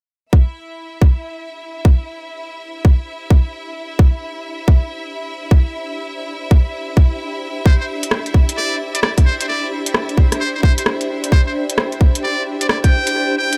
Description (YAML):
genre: UK garage, two-step garage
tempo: 131 BPM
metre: 4/4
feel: swing 64% on 16ths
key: unclear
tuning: A4 = 440 Hz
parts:
  - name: bright symphonic violin section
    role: sustained chords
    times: 0.3-13.6 s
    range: E4 to E5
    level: -32 LUFS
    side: equal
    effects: sidechain pumping
  - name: electronic kick drum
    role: drums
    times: 0.3-12.9 s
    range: none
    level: -13 LUFS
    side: equal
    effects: none
  - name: granular cloud pad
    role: texture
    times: 1.5-13.6 s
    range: D4 to E5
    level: -29 LUFS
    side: equal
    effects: built-in reverb, sidechain pumping
  - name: trumpet with metal mute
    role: melody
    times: 7.7-13.6 s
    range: C5 to G5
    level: -24 LUFS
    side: equal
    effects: dub echo
  - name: garage drum kit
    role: drums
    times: 8.0-13.6 s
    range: hi-hat, rim click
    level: -22 LUFS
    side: equal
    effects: dub echo
room: little or no reverb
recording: echo-heavy mix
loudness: -17 LUFS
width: mono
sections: 0.3-13.6 A section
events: fade-in on ambient pad 0.3-13.6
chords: 0.3 D9sus4